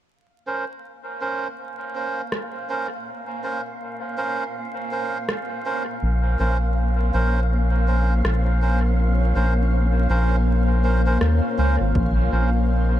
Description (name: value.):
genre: ambient dub.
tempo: 81 BPM.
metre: 4/4.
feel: swing 60% on 16ths.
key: Bb minor.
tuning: A4 = 441 Hz.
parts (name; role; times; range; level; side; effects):
granular cloud pad; sustained chords; 1.3-13.0 s; Bb3 to F5; -29 LUFS; left 2 dB; built-in reverb.
wind-like tuned noise texture; texture; 0.9-13.0 s; Eb5 to F5; -36 LUFS; equal; built-in reverb.
melodica; stabs; 0.5-12.5 s; Db4 to C5; -27 LUFS; right 3 dB; low-pass filter, dub echo.
electronic rim click; drums; 2.3-11.4 s; none; -31 LUFS; equal; dub echo.
round analog bass; bass; 6.0-13.0 s; Ab1 to Eb2; -19 LUFS; equal; tube saturation.
electronic kick drum; drums; 12.0-12.1 s; none; -24 LUFS; equal; none.
room: light reverb.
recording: vinyl crackle.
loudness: -20 LUFS.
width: side -12 dB against mid.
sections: 0.1-12.0 A section; 12.0-13.0 B section.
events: fade-in on ambient pad 0.1-12.0.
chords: 0.1 Bbmadd9.